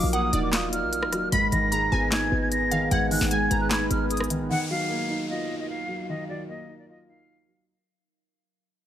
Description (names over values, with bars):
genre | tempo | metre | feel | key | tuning
hip hop, trap | 151 BPM | 4/4 | half-time | Eb harmonic minor | A4 = 441 Hz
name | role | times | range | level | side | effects
jazz flute | melody | 0.0-7.6 s | D5 to Cb7 | -28 LUFS | equal | low-pass filter, tape echo
glassy wavetable pluck | second line | 0.0-4.5 s | D5 to Cb6 | -33 LUFS | equal | chorus, tape echo
dark concert grand piano | accompaniment | 0.0-7.7 s | Ab2 to F4 | -28 LUFS | right 1 dB | low-pass filter
deep dark ambient pad | sustained chords | 0.0-7.7 s | Gb3 to Ab5 | -34 LUFS | right 2 dB | chorus, built-in reverb
short 808-style bass | bass | 0.0-4.5 s | Eb1 to Cb2 | -29 LUFS | left 1 dB | none
trap drum kit | drums | 0.1-4.4 s | handclaps, hi-hat, rim click, snare drum | -28 LUFS | left 1 dB | none
downlifter | sound effects | 4.5-7.7 s | none | -37 LUFS | left 1 dB | none
room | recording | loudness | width
light reverb, digital ambience | none | -22 LUFS | side -11 dB against mid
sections
0.0-4.5 A section; 4.5-7.7 B section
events
fade-out 4.5-7.7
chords
0.0 Ebmadd9; 1.3 Abm; 4.5 Ebmadd9